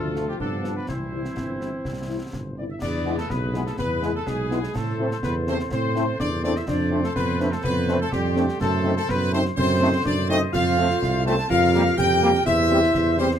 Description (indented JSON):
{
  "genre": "military-style march for wind band",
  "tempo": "124 BPM",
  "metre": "2/4",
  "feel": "straight",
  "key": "unclear",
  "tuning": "A4 = 442 Hz",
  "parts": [
    { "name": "clear trumpet section", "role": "melody", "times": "0.0-13.3 s", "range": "G4 to A5", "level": "-28 LUFS", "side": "left 2 dB", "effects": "none" },
    { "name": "mellow woodwind section", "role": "second line", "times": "0.0-13.4 s", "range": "D4 to C5", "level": "-32 LUFS", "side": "left 3 dB", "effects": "none" },
    { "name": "warm trombone section", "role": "sustained chords", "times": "0.0-13.3 s", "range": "E3 to C4", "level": "-28 LUFS", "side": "right 1 dB", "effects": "none" },
    { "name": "mellow tuba", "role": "bass", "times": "0.0-13.3 s", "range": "G1 to A2", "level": "-26 LUFS", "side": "right 2 dB", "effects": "none" },
    { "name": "mellow French horn section", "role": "accompaniment", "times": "0.2-13.3 s", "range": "F3 to G4", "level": "-29 LUFS", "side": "left 3 dB", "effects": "none" },
    { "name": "concert snare drum, concert bass drum and clash cymbals", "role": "drums", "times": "0.2-13.4 s", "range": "none", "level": "-32 LUFS", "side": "left 1 dB", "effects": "none" },
    { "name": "dark euphonium", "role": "second line", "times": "2.6-13.4 s", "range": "G3 to A4", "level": "-27 LUFS", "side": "right 2 dB", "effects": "none" },
    { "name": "small flute group", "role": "second line", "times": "2.6-13.4 s", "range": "G4 to A5", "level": "-30 LUFS", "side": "left 4 dB", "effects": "none" }
  ],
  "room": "moderate small room reverb, RT60 0.5 s",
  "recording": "none",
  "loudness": "-20 LUFS",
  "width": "side -9 dB against mid",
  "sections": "0.0-2.8 A section; 2.8-13.4 B section",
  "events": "none",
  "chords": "0.4 G7; 0.9 C; 2.8 E; 4.7 Am; 6.7 Dm7/F; 8.6 F#dim7; 10.5 F; 11.5 Gm7/F; 12.5 C/E",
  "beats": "0.40 | 0.88 1.36 | 1.85 2.33 | 2.82 3.30 | 3.78 4.26 | 4.75 5.23 | 5.71 6.20 | 6.68 7.16 | 7.64 8.12 | 8.61 9.09 | 9.57 10.05 | 10.54 11.02 | 11.50 11.98 | 12.47 12.95"
}